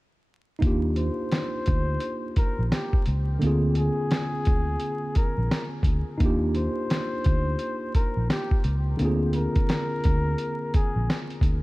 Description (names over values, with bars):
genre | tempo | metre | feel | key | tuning
lo-fi hip hop | 86 BPM | 4/4 | swing 61% on 16ths | Eb major | A4 = 440 Hz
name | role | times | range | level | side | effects
mellow tine electric piano | accompaniment | 0.6-11.6 s | D3 to Ab4 | -29 LUFS | right 1 dB | medium stereo tremolo, low-pass filter, dub echo
vintage muted fingered electric bass | bass | 0.6-11.6 s | Bb1 to Eb2 | -25 LUFS | equal | none
lo-fi sampler-style drum kit | drums | 0.6-11.6 s | hi-hat, kick drum, snare drum | -24 LUFS | equal | none
mellow flugelhorn | melody | 1.0-11.3 s | G4 to C5 | -32 LUFS | left 2 dB | low-pass filter, dub echo
room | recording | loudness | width
little or no reverb | echo-heavy mix, vinyl crackle | -22 LUFS | side -20 dB against mid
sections
0.6-11.6 A section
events
none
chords
0.6 Ebmaj9; 3.4 Bb9/D; 6.2 Ebmaj9; 9.0 Bb9/D